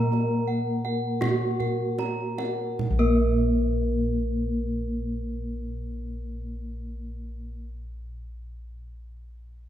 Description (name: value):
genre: Javanese gamelan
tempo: 36-43 BPM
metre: 4/4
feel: straight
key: unclear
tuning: A4 = 440 Hz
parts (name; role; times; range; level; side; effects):
- gamelan-type bronze metallophone; melody; 0.0-7.7 s; Bb3 to Bb4; -32 LUFS; right 1 dB; none
- gamelan-type bronze metallophone; accompaniment; 0.0-7.7 s; Bb3; -30 LUFS; left 1 dB; none
- gamelan-type bossed gongs; arpeggios; 0.0-7.7 s; Bb4 to Gb5; -35 LUFS; left 4 dB; none
- gamelan-type bronze metallophone; arpeggios; 0.0-7.7 s; Bb4 to Bb5; -33 LUFS; right 3 dB; none
- gamelan-type bossed gongs; bass; 0.0-7.6 s; Bb1 to F4; -30 LUFS; equal; none
- kendang; percussion; 0.1-3.6 s; none; -33 LUFS; right 3 dB; none
room: moderate recital hall reverb, RT60 1.5 s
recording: minimal, uncompressed stereo recording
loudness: -24 LUFS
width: side -11 dB against mid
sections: 0.0-2.8 A section; 2.8-9.4 B section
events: slowing down 0.0-2.8; drum fill 1.6-2.8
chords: none